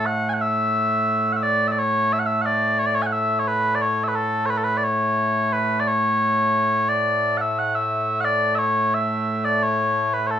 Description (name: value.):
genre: scottish traditional, Scottish pipe music.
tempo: 88 BPM.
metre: 4/4.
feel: straight.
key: A major.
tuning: A4 = 440 Hz.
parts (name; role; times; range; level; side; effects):
mellow small bagpipes; solo; 0.0-10.4 s; A2 to G#5; -19 LUFS; equal; none.
room: wet small room reverb, RT60 0.5 s.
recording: rough home demo mix.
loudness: -19 LUFS.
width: side -9 dB against mid.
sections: 0.0-10.4 A section.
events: none.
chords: none.